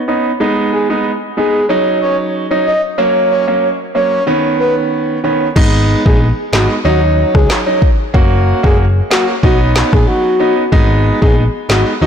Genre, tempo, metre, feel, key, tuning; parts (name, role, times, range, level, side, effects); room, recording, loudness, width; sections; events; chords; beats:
dancehall; 93 BPM; 4/4; straight; G# minor; A4 = 440 Hz
clear grand piano; accompaniment; 0.1-12.1 s; D#3 to F#4; -14 LUFS; right 2 dB; low-pass filter
breathy flute-like synth lead; melody; 0.7-12.1 s; F#4 to D#5; -18 LUFS; left 1 dB; chorus, low-pass filter, tape echo
hollow-body short-scale picked electric bass; bass; 5.6-12.1 s; F#1 to D#2; -14 LUFS; left 1 dB
afro-pop drum kit; drums; 5.6-11.9 s; crash cymbal, handclaps, kick drum, rim click, snare drum; -13 LUFS; left 1 dB
light reverb, digital ambience; blown-out, overdriven recording, overdrive; -10 LUFS; side -8 dB against mid
0.0-5.6 A section; 5.6-12.1 B section
0.4 G#m; 1.7 D#m7; 3.0 F#; 4.3 Badd9; 5.6 G#m; 6.9 D#m7; 8.1 F#; 9.4 Badd9; 10.7 G#m
| 0.40 1.05 1.69 2.34 | 2.98 3.63 4.27 4.92 | 5.56 6.21 6.85 7.50 | 8.14 8.79 9.43 10.08 | 10.72 11.37 12.02